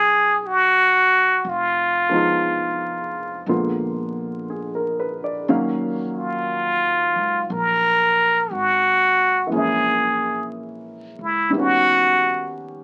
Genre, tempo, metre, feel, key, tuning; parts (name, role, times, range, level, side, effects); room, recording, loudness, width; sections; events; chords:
jazz ballad; 59 BPM; 4/4; swing 66% on 8ths; Eb minor; A4 = 440 Hz
trumpet with plunger mute; melody; 0.0-12.6 s; Fb4 to Bb4; -19 LUFS; equal
clear upright piano; accompaniment; 0.0-12.8 s; D3 to F5; -26 LUFS; equal
upright bass; bass; 0.0-12.8 s; F1 to Eb2; -39 LUFS; equal
moderate club reverb, RT60 0.6 s; very old 78 rpm record, vinyl crackle; -20 LUFS; mono
0.0-12.8 A section
0.0 E6; 1.4 Fm7b5; 3.5 Bb7b9; 5.5 Ebm9; 9.5 Bbm7b5; 11.5 Eb7alt